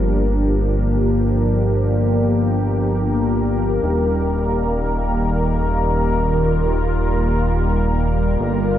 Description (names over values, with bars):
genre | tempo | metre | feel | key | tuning
synthwave | free time | none | none | unclear | A4 = 442 Hz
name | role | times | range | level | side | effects
lush unison pad | sustained chords | 0.0-8.8 s | D3 to Bb4 | -19 LUFS | equal | chorus, phaser
chorused synth bass | bass | 0.0-8.8 s | Eb1 to G1 | -20 LUFS | equal | tube saturation
room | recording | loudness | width
wet lush hall reverb, RT60 2.5 s | big arena sound | -16 LUFS | side -11 dB against mid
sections
0.0-8.8 A section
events
none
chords
0.0 Gm7; 3.8 Eb